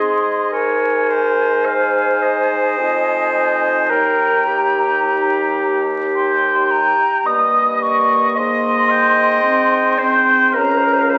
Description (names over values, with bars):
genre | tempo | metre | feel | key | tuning
classical, slow romantic movement for wind quintet | 54 BPM | 4/4 | rubato | Ab major | A4 = 440 Hz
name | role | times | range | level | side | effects
hollow concert flute | melody | 0.0-11.2 s | Ab5 to Eb6 | -21 LUFS | equal | none
clear oboe | second line | 0.0-11.2 s | C5 to G5 | -22 LUFS | equal | none
bright clarinet | accompaniment | 0.0-11.2 s | G4 to Eb5 | -20 LUFS | equal | none
dark French horn | accompaniment | 0.0-11.2 s | Bb3 to Eb4 | -30 LUFS | equal | none
warm bassoon | bass | 0.0-11.2 s | Db2 to Ab2 | -26 LUFS | equal | none
room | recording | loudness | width
wet large studio reverb, RT60 1.2 s | very old 78 rpm record, vinyl crackle | -16 LUFS | mono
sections
0.0-11.2 A section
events
none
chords
0.0 Ab; 3.9 Eb; 8.4 Ab; 10.6 Bbm/Db